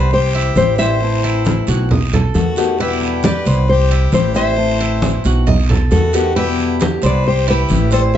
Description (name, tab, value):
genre	latin, Cuban son and guajira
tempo	135 BPM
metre	4/4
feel	straight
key	unclear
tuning	A4 = 440 Hz
part	nylon-string guitar	melody	0.0-8.2 s	A4 to E5	-19 LUFS	left 2 dB	plate reverb
part	clear harmonica	second line	0.0-8.0 s	F#4 to C5	-27 LUFS	left 4 dB	none
part	fingerpicked swing-style acoustic guitar	accompaniment	0.0-8.2 s	B2 to F#4	-22 LUFS	left 6 dB	none
part	Cuban tres	arpeggios	0.0-8.2 s	E4 to D#5	-22 LUFS	right 3 dB	none
part	upright bass	bass	0.0-8.2 s	A1 to E2	-16 LUFS	right 1 dB	none
part	congas	percussion	0.1-8.2 s	none	-19 LUFS	equal	none
part	guiro	percussion	0.1-8.2 s	none	-30 LUFS	right 6 dB	none
room	moderate studio reverb, RT60 0.7 s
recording	dark, warm production, nothing above 7.8 kHz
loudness	-13 LUFS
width	side -10 dB against mid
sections	0.0-8.2 A section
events	none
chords	0.1 C; 1.0 Am; 1.9 B7; 2.8 Em7; 3.7 C; 4.6 Am; 5.5 B7; 6.4 Em7; 7.2 C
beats	0.12 0.57 | 1.01 1.46 1.90 2.35 | 2.79 3.24 3.68 4.13 | 4.58 5.02 5.47 5.91 | 6.36 6.80 7.25 7.69 | 8.14